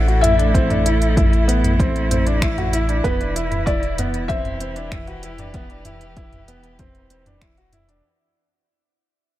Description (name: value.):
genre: piano and strings electronica.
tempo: 96 BPM.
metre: 4/4.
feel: straight.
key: unclear.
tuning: A4 = 440 Hz.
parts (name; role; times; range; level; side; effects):
felt-muted upright piano; melody; 0.0-7.4 s; B4 to F#5; -25 LUFS; left 2 dB; tape echo, shimmer reverb.
warm string quartet; sustained chords; 0.0-8.0 s; A2 to B4; -26 LUFS; right 2 dB; sidechain pumping, shimmer reverb.
warm grand piano; riff; 0.0-8.0 s; B3 to F#4; -25 LUFS; equal; tape echo, shimmer reverb.
warm sub bass; bass; 0.0-8.0 s; E1 to A1; -21 LUFS; equal; sidechain pumping.
deep house drum kit; drums; 0.1-8.0 s; finger snaps, hi-hat, toms; -27 LUFS; right 1 dB; none.
electronic kick drum; drums; 0.5-7.5 s; none; -22 LUFS; equal; none.
room: light reverb.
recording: none.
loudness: -16 LUFS.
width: side -14 dB against mid.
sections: 0.0-8.0 A section.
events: drop 0.0-8.0; fade-out 0.0-8.0.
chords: 0.0 Am; 3.0 Em.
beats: | 0.55 1.17 1.79 2.42 | 3.04 3.67 4.29 4.92 | 5.54 6.17 6.79 7.42.